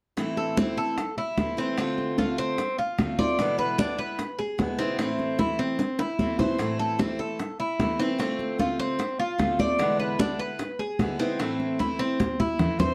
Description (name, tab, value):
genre	latin, Cuban son and guajira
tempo	150 BPM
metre	4/4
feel	straight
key	A harmonic minor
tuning	A4 = 440 Hz
part	picked steel-string acoustic guitar	accompaniment	0.2-12.9 s	E2 to F4	-32 LUFS	equal	none
part	bongos	percussion	0.2-12.9 s	none	-36 LUFS	equal	none
part	congas	percussion	0.2-12.9 s	none	-32 LUFS	equal	none
part	Cuban tres	arpeggios	0.4-12.9 s	C4 to D5	-31 LUFS	equal	none
part	nylon-string guitar	melody	12.8-12.9 s	C5	-28 LUFS	equal	none
room	moderate studio reverb, RT60 0.6 s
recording	dark, warm production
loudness	-27 LUFS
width	mono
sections	0.2-12.9 A section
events	drum fill 5.8-6.6, 12.2-12.9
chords	0.2 Am; 1.8 Dm7; 3.4 E7; 5.0 Am; 8.2 Dm7; 9.8 E7; 11.4 Am